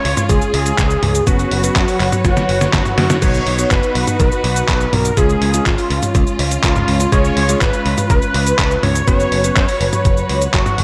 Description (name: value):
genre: italo disco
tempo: 123 BPM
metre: 4/4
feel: straight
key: unclear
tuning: A4 = 440 Hz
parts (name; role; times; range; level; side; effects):
- unison lead; melody; 0.0-10.8 s; E#4 to C#5; -22 LUFS; equal; lush chorus, tape echo
- dark studio string section; sustained chords; 0.0-10.8 s; F#3 to C#5; -24 LUFS; equal; vintage 12-bit sampler grit
- modern bright picked electric bass; bass; 0.1-10.8 s; F#1 to F#2; -22 LUFS; equal; none
- detuned 8-bit digital drum machine; drums; 0.1-10.8 s; cabasa, crash cymbal, handclaps, hi-hat, snare drum, toms; -22 LUFS; equal; studio reverb, gated reverb
- electronic kick drum; drums; 0.3-10.6 s; none; -19 LUFS; equal; studio reverb
- warm electric grand piano; stabs; 1.3-9.6 s; G#3 to B4; -24 LUFS; equal; none
room: light reverb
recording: none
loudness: -15 LUFS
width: mono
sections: 0.0-10.8 A section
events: drum fill 2.2-3.2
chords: 0.0 C#; 1.3 F#sus4; 3.2 B; 5.2 C#; 9.1 F#sus4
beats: 0.29 0.78 | 1.27 1.76 2.25 2.73 | 3.22 3.71 4.20 4.68 | 5.17 5.66 6.15 6.64 | 7.12 7.61 8.10 8.59 | 9.07 9.56 10.05 10.54